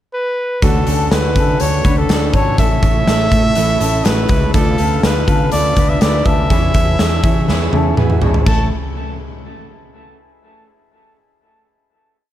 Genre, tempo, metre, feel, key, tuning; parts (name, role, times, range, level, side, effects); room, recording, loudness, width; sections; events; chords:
jangly indie pop; 122 BPM; 4/4; straight; A major; A4 = 440 Hz
clear trumpet; melody; 0.1-8.7 s; A4 to A5; -20 LUFS; right 1 dB; tape echo
combo organ; accompaniment; 0.6-8.7 s; D4 to F5; -26 LUFS; right 4 dB
picked steel-string acoustic guitar; accompaniment; 0.6-8.7 s; A2 to B4; -25 LUFS; right 5 dB; tape echo
electric guitar through a small old amp; arpeggios; 0.6-8.7 s; G#3 to C#5; -23 LUFS; left 5 dB; tape echo
vintage muted fingered electric bass; bass; 0.6-8.7 s; G#1 to E3; -18 LUFS; equal
big rock drum kit; drums; 0.6-8.6 s; crash cymbal, hi-hat, kick drum, snare drum, toms; -16 LUFS; equal
light reverb, studio reverb; echo-heavy mix; -12 LUFS; side -12 dB against mid
0.0-0.6 pickup bar; 0.6-8.5 pre-chorus; 8.5-10.4 final chord
drum fill 7.5-8.5
0.0 N.C.; 0.6 Dmaj7; 2.6 A; 4.5 Dm6; 6.5 E6; 8.5 A